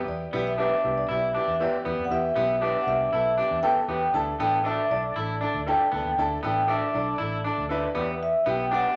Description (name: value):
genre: soul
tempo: 118 BPM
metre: 4/4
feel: straight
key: unclear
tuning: A4 = 440 Hz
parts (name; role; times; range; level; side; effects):
- bright upright piano; accompaniment; 0.0-8.9 s; B3 to B4; -33 LUFS; equal; none
- vintage muted fingered electric bass; bass; 0.0-8.8 s; A1 to F2; -38 LUFS; equal; none
- vibraphone with soft mallets; melody; 0.1-9.0 s; D5 to A5; -28 LUFS; equal; none
- electric guitar at the edge of break-up; riff; 0.3-9.0 s; B3 to E4; -34 LUFS; equal; none
- electric guitar through a small old amp; stabs; 0.6-8.9 s; G4 to E5; -36 LUFS; equal; none
room: wet large studio reverb, RT60 0.9 s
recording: none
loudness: -25 LUFS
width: mono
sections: 0.0-9.0 A section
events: none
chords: 0.0 Em; 4.1 Dsus2; 8.0 Em